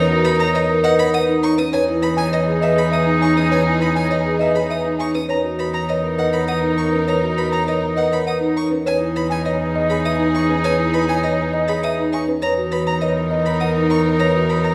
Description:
classical, minimalist pattern music; 101 BPM; 3/4; straight; E lydian; A4 = 440 Hz
folk marimba with soft mallets; melody; 0.0-14.7 s; G#4 to A#5; -25 LUFS; equal
warm oboe; second line; 0.0-14.7 s; D#4; -28 LUFS; equal
rich symphonic string section; sustained chords; 0.0-14.7 s; D#4 to A#4; -29 LUFS; equal
vibraphone with soft mallets; arpeggios; 0.0-14.7 s; C#4 to C#5; -23 LUFS; equal
warm violin; arpeggios; 0.0-14.7 s; D#5 to D#6; -30 LUFS; equal
warm cello; bass; 0.0-14.7 s; E2; -25 LUFS; equal
wet recital hall reverb, RT60 1.6 s; recorded in a church or concert hall; -18 LUFS; mono
0.0-14.7 A section
0.0 Bmaj7/E; 1.7 Emaj7; 5.3 Bmaj7/E; 8.9 Emaj7; 12.4 Bmaj7/E

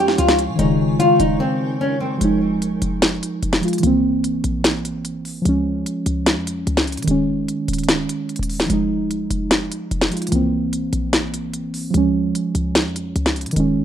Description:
hip hop, trap; 148 BPM; 4/4; half-time; F minor; A4 = 440 Hz
nylon-string guitar; melody; 0.0-2.2 s; C4 to G4; -18 LUFS; left 1 dB; digital delay
muted felt-like synth keys; accompaniment; 0.0-13.8 s; Db3 to F4; -20 LUFS; right 1 dB; chorus
granular cloud pad; sustained chords; 0.0-2.2 s; Eb4 to Db6; -32 LUFS; equal; built-in reverb
short 808-style bass; bass; 0.0-13.8 s; Eb1 to Db3; -25 LUFS; left 1 dB
trap drum kit; drums; 0.1-13.7 s; hi-hat, snare drum; -20 LUFS; left 1 dB
little or no reverb; rough home demo mix; -17 LUFS; side -9 dB against mid
0.0-2.2 A section; 2.2-13.8 B section
break 1.4-2.2
0.0 Db; 0.6 Eb7sus4; 2.2 Fm7; 3.8 C7; 5.5 Db; 7.1 Eb7sus4; 8.7 Fm7; 10.3 C7; 11.9 Db

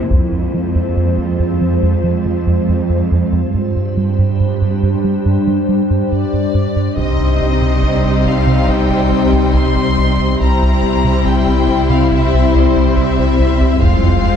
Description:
cinematic, hybrid orchestral and electronic film score; 70 BPM; 4/4; straight; A4 = 440 Hz
glassy FM pad; sustained chords; 0.0-14.4 s; G3 to C5; -19 LUFS; left 2 dB; ensemble chorus, built-in reverb
rubbery square bass; riff; 0.0-14.4 s; C2 to G3; -18 LUFS; right 2 dB
warm symphonic cello section; bass; 0.0-14.4 s; F2 to C3; -20 LUFS; right 4 dB
taiko ensemble; drums; 0.1-1.8, 7.0-8.6, 13.8-14.4 s; -19 LUFS; left 1 dB
warm symphonic violin section; melody; 6.1-14.4 s; C5 to C6; -22 LUFS; left 3 dB
warm symphonic violin section; second line; 7.0-14.4 s; Eb4 to C5; -22 LUFS; left 5 dB
clear symphonic viola section; accompaniment; 7.0-14.4 s; G3 to C4; -22 LUFS; equal
dark French horn section; sustained chords; 7.0-14.4 s; G3 to F4; -21 LUFS; left 4 dB
warm sub bass; bass; 7.0-14.4 s; F1 to C2; -17 LUFS; equal
moderate concert hall reverb, RT60 2.2 s; dark, warm production; -12 LUFS; side -8 dB against mid
0.0-7.0 A section; 7.0-14.4 B section
build-up 0.0-7.0
0.1 Fm; 3.5 Gsus4; 7.0 Cm; 10.4 C7; 13.8 Fm

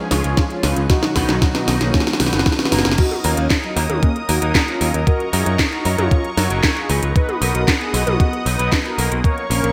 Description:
italo disco; 115 BPM; 4/4; straight; A4 = 440 Hz
mellow synth brass; melody; 0.0-9.7 s; D#3 to Db5; -27 LUFS; equal; chorus, digital delay
warm analog pad; sustained chords; 0.0-9.7 s; B2 to Eb6; -29 LUFS; equal; chorus
electric guitar with an envelope filter; stabs; 0.0-9.7 s; F3 to D#5; -29 LUFS; equal; ensemble chorus
modern bright picked electric bass; bass; 0.1-9.7 s; F#1 to Gb2; -23 LUFS; equal
house drum kit; drums; 0.1-9.7 s; crash cymbal, handclaps, hi-hat, snare drum, toms; -23 LUFS; equal; gated reverb
electronic kick drum; drums; 0.4-9.3 s; -20 LUFS; equal
moderate lush hall reverb, RT60 2.2 s; bright 1980s-style digital production; -18 LUFS; mono
0.0-3.0 A section; 3.0-9.7 B section
drum fill 0.0-3.0; filter sweep on clean electric guitar 0.0-3.0
0.0 Db; 0.9 B; 3.0 Ebm; 5.1 Gb6; 7.2 B

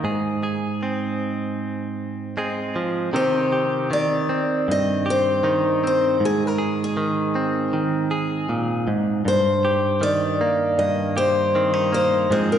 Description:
acoustic folk-pop ballad; 78 BPM; 4/4; straight; Eb major; A4 = 440 Hz
direct-recorded clean electric guitar; accompaniment; 0.0-12.6 s; G2 to Ab4; -22 LUFS; right 2 dB
picked acoustic archtop guitar; melody; 3.2-12.6 s; Ab4 to Eb5; -21 LUFS; left 2 dB
wet scoring stage reverb, RT60 2.1 s; heard from further back in the room, nothing above 11.0 kHz; -19 LUFS; side -9 dB against mid
0.0-3.1 A section; 3.1-12.6 B section
0.0 Fm/Ab (rootless); 3.1 Cm; 6.2 Ab; 9.3 Eb/G

